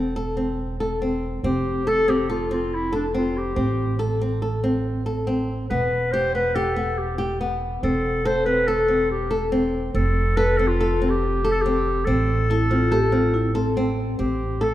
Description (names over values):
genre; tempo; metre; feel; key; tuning
contemporary instrumental, chamber music in an uneven meter; 141 BPM; 5/4; straight; A minor; A4 = 438 Hz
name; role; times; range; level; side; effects
flamenco guitar; arpeggios; 0.0-14.7 s; B3 to A4; -23 LUFS; left 1 dB; none
upright bass; bass; 0.0-14.7 s; E1 to A1; -26 LUFS; right 1 dB; none
mellow clarinet; melody; 1.4-14.7 s; D4 to C5; -24 LUFS; left 1 dB; none
vibraphone with soft mallets; second line; 12.5-14.2 s; C4 to G4; -26 LUFS; left 3 dB; none
room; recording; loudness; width
moderate concert hall reverb, RT60 2.4 s; dark, warm production; -20 LUFS; side -13 dB against mid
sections
0.0-14.2 A section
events
none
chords
0.0 Am/E; 1.4 F; 3.6 Am7; 5.7 Em; 7.8 Am/E; 10.0 F; 12.1 Am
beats
0.16 0.59 1.02 | 1.44 1.87 2.30 2.72 3.15 | 3.57 4.00 4.43 4.85 5.28 | 5.70 6.13 6.55 6.98 7.40 | 7.83 8.25 8.68 9.10 9.53 | 9.95 10.38 10.80 11.23 11.65 | 12.08 12.50 12.93 13.35 13.78 | 14.20 14.63